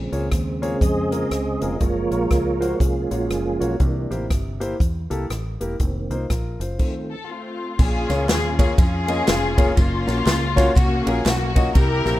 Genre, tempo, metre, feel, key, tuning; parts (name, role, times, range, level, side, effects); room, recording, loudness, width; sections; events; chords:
uptempo gospel; 120 BPM; 4/4; swing 62% on 8ths; Bb minor; A4 = 440 Hz
warm baby grand piano; accompaniment; 0.0-12.2 s; Bb2 to Eb5; -26 LUFS; left 1 dB
tonewheel organ; sustained chords; 0.0-7.2 s; Db3 to Eb5; -24 LUFS; right 2 dB; slow rotary speaker, chorus vibrato
fingered electric bass; bass; 0.0-12.2 s; E1 to F2; -25 LUFS; equal
swinging big-band drum kit; drums; 0.1-12.2 s; crash cymbal, hi-hat, kick drum, ride cymbal, rim click, snare drum; -20 LUFS; equal
rich studio string section; melody; 7.1-12.2 s; A3 to Bb4; -23 LUFS; left 2 dB; slapback echo
tambourine and handclaps; percussion; 7.8-12.1 s; -36 LUFS; right 6 dB
light reverb, small room ambience; rough home demo mix; -18 LUFS; side -15 dB against mid
0.0-7.8 A section; 7.8-12.2 B section
tonewheel organ solo 0.0-7.8; stop 6.8-7.8
0.0 Bbm7; 1.8 Gbmaj7; 3.8 C7; 5.8 F7sus4; 6.8 F7; 7.8 Bbm7; 9.8 Gbmaj7